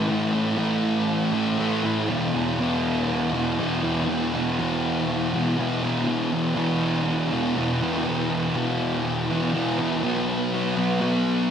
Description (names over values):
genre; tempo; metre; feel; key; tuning
rock; 121 BPM; 4/4; straight; unclear; A4 = 438 Hz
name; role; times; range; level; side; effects
thick fuzz guitar; solo; 0.0-11.5 s; E2 to B3; -21 LUFS; equal; distortion, wide subtle chorus, diffuse ambient delay
room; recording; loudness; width
wet lush hall reverb, RT60 2.0 s, digital ambience; dreamy mix soaked in reverb; -22 LUFS; side -8 dB against mid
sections
0.0-10.0 A section; 10.0-11.5 B section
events
none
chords
0.0 A5; 2.1 E5; 10.0 B5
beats
| 0.10 0.60 1.10 1.60 | 2.10 2.59 3.09 3.59 | 4.09 4.58 5.08 5.58 | 6.07 6.57 7.07 7.56 | 8.06 8.55 9.04 9.54 | 10.03 10.53 11.02